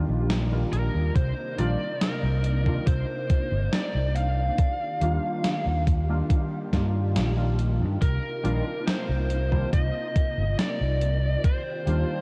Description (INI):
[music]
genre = vaporwave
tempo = 70 BPM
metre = 4/4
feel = straight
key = unclear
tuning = A4 = 440 Hz
[part]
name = warbly lo-fi synth keys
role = accompaniment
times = 0.0-12.2 s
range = Eb3 to F4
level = -34 LUFS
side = equal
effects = lush chorus, diffuse ambient delay
[part]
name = soft string machine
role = sustained chords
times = 0.0-12.2 s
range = C3 to G4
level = -39 LUFS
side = equal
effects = ensemble chorus
[part]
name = fingered electric bass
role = bass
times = 0.0-12.0 s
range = G1 to G2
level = -27 LUFS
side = equal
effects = none
[part]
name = gated 80s digital drum machine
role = drums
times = 0.3-12.0 s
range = hi-hat, snare drum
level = -33 LUFS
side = equal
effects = gated reverb, gated reverb snare, overdrive
[part]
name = biting lead guitar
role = melody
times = 0.7-12.2 s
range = Bb4 to F5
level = -34 LUFS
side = equal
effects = overdrive, tape echo
[part]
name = electronic kick drum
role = drums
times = 1.2-11.6 s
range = none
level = -26 LUFS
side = equal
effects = overdrive
[sound]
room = light reverb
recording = cassette tape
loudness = -25 LUFS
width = mono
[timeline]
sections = 0.0-12.2 A section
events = none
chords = 0.0 Ebmaj9; 1.2 Cm11; 4.6 Ebmaj9; 8.0 Cm11; 11.4 Ebmaj9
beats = 0.30 | 1.16 2.01 2.87 3.73 | 4.58 5.44 6.30 7.16 | 8.01 8.87 9.73 10.59 | 11.44